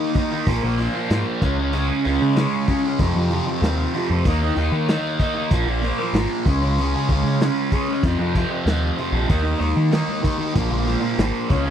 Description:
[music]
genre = psychedelic rock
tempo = 95 BPM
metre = 4/4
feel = straight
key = Bb minor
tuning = A4 = 439 Hz
[part]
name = thick fuzz guitar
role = riff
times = 0.0-11.7 s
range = F2 to Eb4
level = -21 LUFS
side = right 1 dB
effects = distortion, phaser
[part]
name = vintage drum kit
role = drums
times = 0.1-11.6 s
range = hi-hat, kick drum, snare drum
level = -21 LUFS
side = equal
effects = none
[part]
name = growling picked electric bass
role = bass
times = 0.5-11.7 s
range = Ab1 to Eb3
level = -22 LUFS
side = equal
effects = overdrive
[part]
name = congas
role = percussion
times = 9.6-11.7 s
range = none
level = -34 LUFS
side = left 5 dB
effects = none
[sound]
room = little or no reverb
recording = dry, close 1970s-style studio recording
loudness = -18 LUFS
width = side -9 dB against mid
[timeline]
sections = 0.0-11.7 A section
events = none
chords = 0.5 Bb5; 1.4 Db5; 3.0 F5; 4.3 Eb5; 5.5 Bb5; 6.5 Db5; 8.0 F5; 9.3 Eb5; 10.6 Bb5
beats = 0.47 1.10 | 1.73 2.36 2.99 3.62 | 4.26 4.89 5.52 6.15 | 6.78 7.41 8.04 8.67 | 9.30 9.93 10.55 11.18

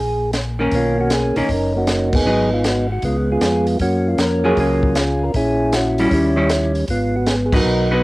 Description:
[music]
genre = soul jazz organ trio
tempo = 156 BPM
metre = 4/4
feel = swing 67% on 8ths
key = F# major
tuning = A4 = 440 Hz
[part]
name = percussive tonewheel organ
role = melody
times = 0.0-8.0 s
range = G3 to C#5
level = -19 LUFS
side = equal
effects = slow rotary speaker, cassette tape
[part]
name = tonewheel organ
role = bass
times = 0.0-8.0 s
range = F#1 to F#2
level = -22 LUFS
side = equal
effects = chorus vibrato, slow rotary speaker
[part]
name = compact cocktail drum kit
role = drums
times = 0.3-7.6 s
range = crash cymbal, hi-hat, kick drum, snare drum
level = -23 LUFS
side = equal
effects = cassette tape
[part]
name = vintage hollow-body jazz guitar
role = accompaniment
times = 0.6-8.0 s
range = D#3 to G#4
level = -19 LUFS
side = equal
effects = cassette tape
[sound]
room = light reverb, studio ambience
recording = home recording on cassette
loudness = -15 LUFS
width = side -20 dB against mid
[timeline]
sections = 0.7-8.0 A section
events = band accent 2.1, 7.5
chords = 0.0 F#69 (rootless); 0.7 Bmaj9; 2.3 G#m7; 3.0 C#7; 3.8 F#maj9; 5.3 A#m7b5; 6.1 D#7b9; 6.9 G#m7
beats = 0.34 | 0.72 1.11 1.49 1.88 | 2.26 2.65 3.03 3.42 | 3.80 4.19 4.57 4.96 | 5.34 5.73 6.11 6.50 | 6.88 7.27 7.65

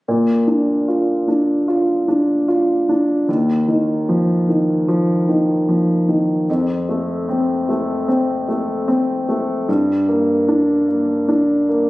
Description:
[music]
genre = pop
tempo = 75 BPM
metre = 4/4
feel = straight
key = Bb major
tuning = A4 = 438 Hz
[part]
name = warm grand piano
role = solo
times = 0.1-11.9 s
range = Eb2 to F4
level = -15 LUFS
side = equal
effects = none
[sound]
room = light reverb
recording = recorded on a phone in the room, studio reverb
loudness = -15 LUFS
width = side -18 dB against mid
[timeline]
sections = 0.1-11.9 A section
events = none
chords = 0.1 Bb; 3.3 Ebsus2; 6.5 F; 9.7 Gm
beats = | 0.08 0.88 1.68 2.48 | 3.28 4.08 4.88 5.68 | 6.48 7.28 8.08 8.88 | 9.68 10.48 11.28

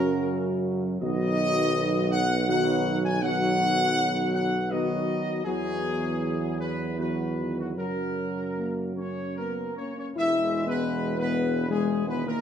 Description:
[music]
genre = classical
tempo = 73-82 BPM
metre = 3/4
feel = straight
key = B major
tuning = A4 = 440 Hz
[part]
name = clear trumpet section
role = melody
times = 0.0-12.4 s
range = F#4 to G#5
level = -29 LUFS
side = left 1 dB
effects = none
[part]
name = mellow French horn section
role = sustained chords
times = 0.0-12.4 s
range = F#3 to F#4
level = -30 LUFS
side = left 5 dB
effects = none
[part]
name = warm trombone section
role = sustained chords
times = 0.0-12.4 s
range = C#3 to G#3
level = -31 LUFS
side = right 2 dB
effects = none
[part]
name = warm tuba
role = bass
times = 0.0-12.4 s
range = E1 to F#2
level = -30 LUFS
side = right 4 dB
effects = none
[sound]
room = moderate scoring stage reverb, RT60 2.0 s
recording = none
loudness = -24 LUFS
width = side -8 dB against mid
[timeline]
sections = 0.0-10.2 A section; 10.2-12.4 B section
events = none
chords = 0.0 F#; 1.0 B; 5.5 Eadd9; 7.8 F#; 10.2 E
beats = 0.27 | 1.01 1.75 2.48 | 3.22 3.96 4.71 | 5.45 6.21 6.98 | 7.77 8.56 9.36 | 10.16 10.92 11.69

